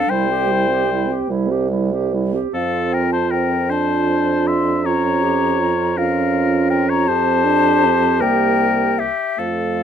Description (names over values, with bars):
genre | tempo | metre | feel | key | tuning
classical, slow romantic movement for wind quintet | 48-54 BPM (dotted quarters) | 6/8 | rubato | F major | A4 = 440 Hz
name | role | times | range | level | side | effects
mellow hollow silver concert flute | melody | 0.0-9.8 s | E5 to C6 | -21 LUFS | left 8 dB | none
clear oboe | second line | 0.0-9.8 s | G4 to E5 | -22 LUFS | left 5 dB | none
mellow French horn | accompaniment | 0.0-9.8 s | G3 to D4 | -22 LUFS | right 2 dB | none
warm clarinet | accompaniment | 0.0-9.8 s | D4 to G4 | -23 LUFS | right 9 dB | none
mellow bassoon | bass | 0.1-9.8 s | C2 to F2 | -22 LUFS | right 4 dB | none
room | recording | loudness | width
little or no reverb | close, detailed microphones | -15 LUFS | side -8 dB against mid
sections
0.0-9.8 A section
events
none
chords
0.1 C; 2.5 F; 4.9 Bbm/F; 7.1 F; 8.2 C5